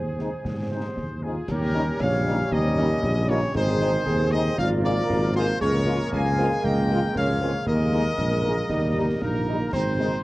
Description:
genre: military-style march for wind band.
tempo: 116 BPM.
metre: 2/4.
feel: straight.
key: Eb major.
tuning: A4 = 442 Hz.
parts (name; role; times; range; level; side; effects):
bright trumpet section; melody; 0.0-10.2 s; Ab4 to Ab5; -29 LUFS; left 1 dB; none.
mellow woodwind section; second line; 0.0-10.2 s; Eb4 to Db5; -32 LUFS; right 3 dB; none.
dark tuba; bass; 0.0-10.2 s; Ab1 to Ab2; -25 LUFS; equal; none.
mellow French horn section; accompaniment; 0.2-10.1 s; Eb3 to F4; -31 LUFS; left 2 dB; none.
concert snare drum, concert bass drum and clash cymbals; drums; 0.2-10.1 s; none; -32 LUFS; equal; none.
large flute ensemble; second line; 0.7-10.2 s; F4 to C6; -34 LUFS; equal; none.
mellow trombone section; sustained chords; 1.5-9.5 s; Eb3 to Db4; -31 LUFS; equal; none.
clear euphonium; second line; 2.0-10.2 s; Ab3 to Ab4; -31 LUFS; right 2 dB; none.
room: light reverb, studio ambience.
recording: worn, warbling old tape, cassette tape, warbly pitch drift.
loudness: -21 LUFS.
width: side -18 dB against mid.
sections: 0.0-1.5 A section; 1.5-9.7 B section.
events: none.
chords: 0.0 Ab; 1.5 Eb7; 3.6 Ab; 4.6 Bb7/Ab; 5.6 Bbm7/Db; 7.7 Ebsus4; 8.7 Eb.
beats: | 0.45 0.97 | 1.49 2.00 | 2.52 3.04 | 3.55 4.07 | 4.58 5.10 | 5.61 6.13 | 6.64 7.16 | 7.67 8.19 | 8.71 9.22 | 9.74.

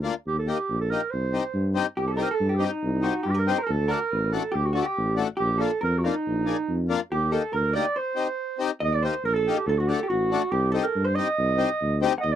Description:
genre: klezmer.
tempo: 140 BPM.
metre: 2/4.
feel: straight.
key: C dorian sharp4.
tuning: A4 = 436 Hz.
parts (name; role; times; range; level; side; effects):
warm clarinet; melody; 0.0-12.4 s; Eb4 to Eb5; -27 LUFS; right 4 dB; none.
accordion; accompaniment; 0.0-12.1 s; A3 to Ab4; -26 LUFS; left 8 dB; none.
mellow tuba; bass; 0.0-12.4 s; A1 to G2; -26 LUFS; equal; none.
vintage hollow-body jazz guitar; second line; 2.0-12.4 s; Eb4 to F#5; -31 LUFS; right 1 dB; none.
room: light reverb.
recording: dry, close 1970s-style studio recording.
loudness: -23 LUFS.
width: side -10 dB against mid.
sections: 0.0-2.0 A section; 2.0-8.8 A section; 8.8-12.4 B section.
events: break 8.0-8.8.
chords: 0.3 Eb; 1.1 Cm; 3.7 D; 5.4 Bb7; 7.1 Eb; 8.0 Cm; 8.8 Eb; 9.7 D; 10.5 Cm.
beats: | 0.25 0.68 | 1.11 1.54 | 1.97 2.39 | 2.82 3.25 | 3.68 4.11 | 4.53 4.96 | 5.39 5.82 | 6.25 6.68 | 7.11 7.53 | 7.96 8.39 | 8.82 9.25 | 9.68 10.10 | 10.53 10.96 | 11.38 11.81 | 12.23.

